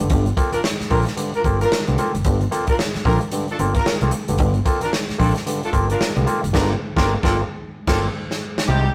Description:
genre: funk.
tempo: 112 BPM.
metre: 4/4.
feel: swing 60% on 16ths.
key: G minor.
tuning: A4 = 440 Hz.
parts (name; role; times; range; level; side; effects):
overdriven clav; stabs; 0.0-8.9 s; G2 to A4; -26 LUFS; equal; none.
fingered electric bass; bass; 0.0-8.9 s; F#1 to C2; -23 LUFS; equal; none.
swinging big-band drum kit; drums; 0.1-8.7 s; crash cymbal, hi-hat, kick drum, snare drum; -25 LUFS; equal; none.
warm horn section; second line; 0.5-8.9 s; G3 to Bb4; -26 LUFS; equal; none.
room: moderate studio reverb, RT60 0.6 s.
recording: rough rehearsal-room recording, tube saturation.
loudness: -20 LUFS.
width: mono.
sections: 0.0-8.7 A section.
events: band accent 6.5-8.7; drum fill 8.1-8.7.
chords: 0.0 Gm11.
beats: | 0.10 0.64 1.18 1.71 | 2.25 2.78 3.32 3.85 | 4.39 4.93 5.46 6.00 | 6.53 7.07 7.61 8.14 | 8.68.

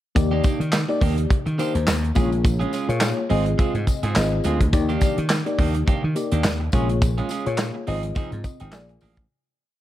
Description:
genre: early-eighties boogie funk.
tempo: 105 BPM.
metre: 4/4.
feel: swing 56% on 16ths.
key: Eb major.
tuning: A4 = 439 Hz.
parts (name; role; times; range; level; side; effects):
FM electric piano with soft pad layer; accompaniment; 0.2-9.3 s; Bb3 to Ab5; -26 LUFS; left 3 dB; chorus, phaser.
electric guitar at the edge of break-up; riff; 0.2-9.2 s; Eb3 to Ab4; -30 LUFS; right 6 dB; wide subtle chorus.
slap bass; bass; 0.2-9.3 s; Ab1 to Eb3; -23 LUFS; equal; none.
modern studio drum kit; drums; 0.2-9.3 s; handclaps, hi-hat, kick drum, snare drum; -23 LUFS; equal; none.
tambourine; percussion; 0.2-9.2 s; none; -40 LUFS; left 6 dB; none.
room: small room ambience.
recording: dark, warm production.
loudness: -19 LUFS.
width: side -13 dB against mid.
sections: 0.2-9.3 verse.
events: fade-out 7.0-9.3; FM electric piano fill 8.2-9.3.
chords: 0.2 Ebmaj7; 2.2 Bbm7; 3.3 Ab6; 4.7 Ebmaj7; 6.7 Bbm7; 7.9 Ab6; 8.7 Bb7.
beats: | 0.16 0.73 1.30 1.87 | 2.45 3.02 3.59 4.16 | 4.73 5.30 5.87 6.45 | 7.02 7.59 8.16 8.73.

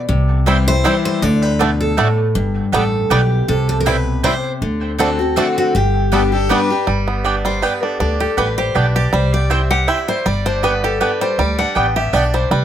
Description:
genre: bluegrass.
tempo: 160 BPM.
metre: 3/4.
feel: swing 54% on 8ths.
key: G major.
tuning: A4 = 440 Hz.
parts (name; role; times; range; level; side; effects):
picked steel-string acoustic guitar; accompaniment; 0.0-12.6 s; G2 to G5; -20 LUFS; left 3 dB; none.
upright bass; bass; 0.1-12.6 s; G1 to D2; -18 LUFS; equal; none.
bluegrass banjo; arpeggios; 0.5-12.6 s; G3 to G4; -20 LUFS; right 4 dB; none.
mandolin; stabs; 0.5-12.2 s; A3 to A5; -22 LUFS; right 5 dB; tape echo.
picked steel-string acoustic guitar; melody; 0.7-6.5 s; F#4 to D5; -20 LUFS; equal; none.
rich fiddle; second line; 6.1-6.9 s; A4 to B4; -23 LUFS; left 2 dB; none.
room: light reverb.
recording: close, detailed microphones.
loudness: -14 LUFS.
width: side -10 dB against mid.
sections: 0.0-6.9 A section; 6.9-12.6 B section.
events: steel-string acoustic guitar solo 6.9-12.6.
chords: 0.1 C; 1.2 D; 2.4 G; 3.5 C; 4.6 D7; 5.7 G; 9.1 C; 10.3 G.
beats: | 0.09 0.47 0.85 | 1.23 1.60 1.98 | 2.36 2.73 3.11 | 3.49 3.86 4.24 | 4.62 4.99 5.37 | 5.75 6.12 6.50 | 6.87 7.25 7.63 | 8.00 8.38 8.76 | 9.13 9.51 9.88 | 10.26 10.63 11.01 | 11.39 11.76 12.14 | 12.51.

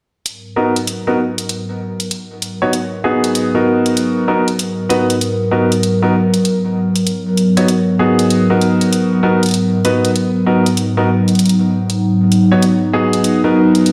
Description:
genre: glitch hop.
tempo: 97 BPM.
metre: 4/4.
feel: swing 64% on 16ths.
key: G# minor.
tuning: A4 = 443 Hz.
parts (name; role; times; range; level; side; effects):
warbly tape-like pad; sustained chords; 0.6-13.9 s; G#2 to A#4; -17 LUFS; equal; chorus, built-in reverb.
electronic hi-hat; drums; 0.3-13.9 s; none; -25 LUFS; equal; overdrive.
clear grand piano; stabs; 0.6-13.9 s; B3 to C#5; -18 LUFS; equal; low-pass filter, tape echo.
room: wet plate reverb, RT60 3.2 s.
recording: played on a big sound system in a bare room, stone room reverb.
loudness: -15 LUFS.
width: mono.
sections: 0.3-13.9 A section.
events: none.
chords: 0.3 G#m9.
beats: | 0.26 0.88 1.50 2.11 | 2.73 3.35 3.97 4.59 | 5.21 5.83 6.44 7.06 | 7.68 8.30 8.92 9.54 | 10.15 10.77 11.39 12.01 | 12.63 13.25 13.87.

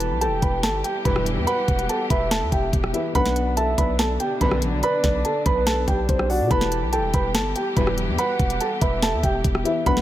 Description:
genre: hip hop, trap.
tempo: 143 BPM.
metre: 4/4.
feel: half-time.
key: E minor.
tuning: A4 = 440 Hz.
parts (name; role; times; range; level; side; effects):
dark concert grand piano; melody; 0.0-10.0 s; E4 to B5; -24 LUFS; right 1 dB; ping-pong delay.
soft octave-layered synth lead; second line; 0.0-10.0 s; B4 to A5; -28 LUFS; right 2 dB; chorus, ping-pong delay.
felt-muted upright piano; accompaniment; 0.0-10.0 s; B2 to B4; -32 LUFS; left 9 dB; none.
clear symphonic string section; sustained chords; 0.0-10.0 s; D3 to G4; -31 LUFS; left 1 dB; none.
hard-hitting 808-style bass; bass; 0.0-10.0 s; E1 to B2; -26 LUFS; equal; none.
trap drum kit; drums; 0.0-10.0 s; hi-hat, kick drum, rim click, snare drum; -23 LUFS; equal; none.
analog synth brass; stabs; 1.1-1.5, 4.4-4.8, 7.8-8.2 s; B1 to E3; -27 LUFS; left 1 dB; chorus.
room: light reverb, small room ambience.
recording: none.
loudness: -19 LUFS.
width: side -13 dB against mid.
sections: 0.0-10.0 A section.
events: none.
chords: 0.0 Em; 3.1 Bm; 6.5 Em.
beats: 0.21 0.63 1.05 | 1.47 1.89 2.31 2.73 | 3.15 3.57 3.99 4.41 | 4.83 5.25 5.67 6.09 | 6.51 6.93 7.35 7.77 | 8.19 8.61 9.02 9.44 | 9.86.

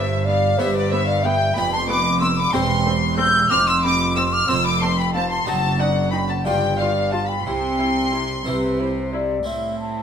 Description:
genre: classical, baroque-style concerto movement with solo episodes.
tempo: 61 BPM (dotted quarters).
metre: 6/8.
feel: straight.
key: C major.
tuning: A4 = 442 Hz.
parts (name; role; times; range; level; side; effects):
mellow hollow baroque flute; melody; 0.0-10.0 s; B4 to E6; -23 LUFS; left 1 dB; none.
warm chamber violin section; melody; 0.0-10.0 s; A4 to G6; -24 LUFS; equal; none.
warm chamber violin section; second line; 0.0-10.0 s; E4 to G6; -28 LUFS; left 6 dB; none.
harpsichord; accompaniment; 0.0-10.0 s; E2 to A4; -31 LUFS; right 1 dB; none.
warm chamber viola section; accompaniment; 0.0-10.0 s; B3 to F4; -30 LUFS; right 1 dB; none.
rich chamber cello section; bass; 0.0-10.0 s; E2 to C3; -24 LUFS; right 2 dB; none.
rich chamber double bass section; bass; 0.0-9.4 s; E1 to C2; -26 LUFS; right 3 dB; none.
room: wet recital hall reverb, RT60 1.4 s.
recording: none.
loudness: -17 LUFS.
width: side -8 dB against mid.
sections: 0.0-9.5 A section.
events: none.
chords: 0.0 G; 1.6 G7/F; 2.5 C/E; 3.5 Dm7/F; 5.5 D13b9/F#; 6.5 G7; 7.5 C; 9.5 Am.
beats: 0.59 | 1.56 2.53 | 3.51 4.48 | 5.46 6.45 | 7.45 8.46 | 9.47.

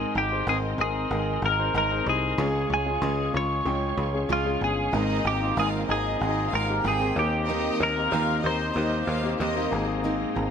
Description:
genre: pop.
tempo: 94 BPM.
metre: 4/4.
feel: straight.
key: Ab major.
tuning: A4 = 440 Hz.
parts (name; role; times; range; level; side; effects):
twelve-string electric guitar; melody; 0.0-9.7 s; F4 to Db5; -27 LUFS; equal; phaser.
clear concert grand piano; accompaniment; 0.0-10.5 s; Ab2 to G5; -30 LUFS; left 6 dB; none.
bright tonewheel organ; sustained chords; 0.0-10.5 s; Ab3 to Db6; -38 LUFS; right 1 dB; chorus vibrato, fast rotary speaker.
picked steel-string acoustic guitar; riff; 0.0-10.5 s; Db3 to Bb4; -32 LUFS; right 5 dB; none.
picked electric bass; bass; 0.0-10.5 s; G1 to Eb2; -29 LUFS; equal; none.
warm studio violin section; second line; 4.9-9.8 s; Eb4 to G5; -33 LUFS; left 1 dB; none.
room: light reverb.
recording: none.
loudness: -23 LUFS.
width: side -7 dB against mid.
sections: 0.0-10.5 A section.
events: none.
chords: 0.0 Abadd9; 2.4 Db; 4.9 Abadd9; 7.2 Eb6; 9.7 Abadd9.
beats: 0.48 1.11 1.75 | 2.39 3.03 3.67 4.30 | 4.94 5.58 6.22 6.85 | 7.49 8.13 8.77 9.40 | 10.04.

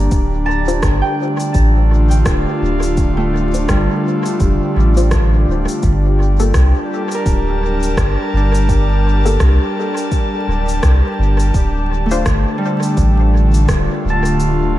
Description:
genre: ambient dub.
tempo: 84 BPM.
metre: 4/4.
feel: swing 59% on 16ths.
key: unclear.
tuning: A4 = 440 Hz.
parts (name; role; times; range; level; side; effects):
airy breathy pad; sustained chords; 0.0-14.8 s; D3 to A5; -20 LUFS; equal; chorus.
Celtic harp; arpeggios; 0.0-14.8 s; G3 to Bb5; -23 LUFS; right 1 dB; diffuse ambient delay.
soft dub sub bass; bass; 0.0-14.8 s; D1 to C2; -14 LUFS; equal; tube saturation.
bubbling stepped-filter texture; texture; 0.0-14.8 s; G3 to G4; -27 LUFS; equal; chorus, built-in reverb.
electronic kick drum; drums; 0.1-13.9 s; none; -18 LUFS; equal; none.
electronic shaker and rim click; drums; 0.1-14.6 s; none; -26 LUFS; equal; dub echo.
filtered dub chord stab; stabs; 0.7-12.2 s; Bb3 to C5; -25 LUFS; left 3 dB; chorus, dub echo.
room: light reverb.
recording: vinyl crackle.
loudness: -13 LUFS.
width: side -14 dB against mid.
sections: 0.0-14.8 A section.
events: kick drops out 14.4-14.8.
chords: 0.0 Dm.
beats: | 0.12 0.83 1.54 2.26 | 2.97 3.69 4.40 5.12 | 5.83 6.54 7.26 7.97 | 8.69 9.40 10.12 10.83 | 11.54 12.26 12.97 13.69 | 14.40.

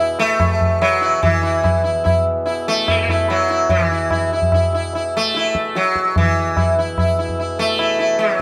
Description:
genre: indian classical, Hindustani.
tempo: 146 BPM.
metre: 3/4.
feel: straight.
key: unclear.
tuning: A4 = 440 Hz.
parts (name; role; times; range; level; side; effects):
sitar; melody; 0.0-8.4 s; E3 to E4; -19 LUFS; equal; none.
hand-pumped harmonium; drone; 0.0-8.4 s; E2 to B2; -31 LUFS; equal; none.
tabla; percussion; 0.2-8.4 s; none; -22 LUFS; equal; none.
room: light reverb.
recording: none.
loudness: -17 LUFS.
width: mono.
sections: 0.0-3.7 A section; 3.7-8.4 A section.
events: speeding up 0.0-8.4.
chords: none.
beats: 0.39 0.81 | 1.22 1.64 2.05 | 2.47 2.88 3.29 | 3.71 4.12 4.53 | 4.94 5.34 5.75 | 6.16 6.57 6.97 | 7.38 7.79 8.19.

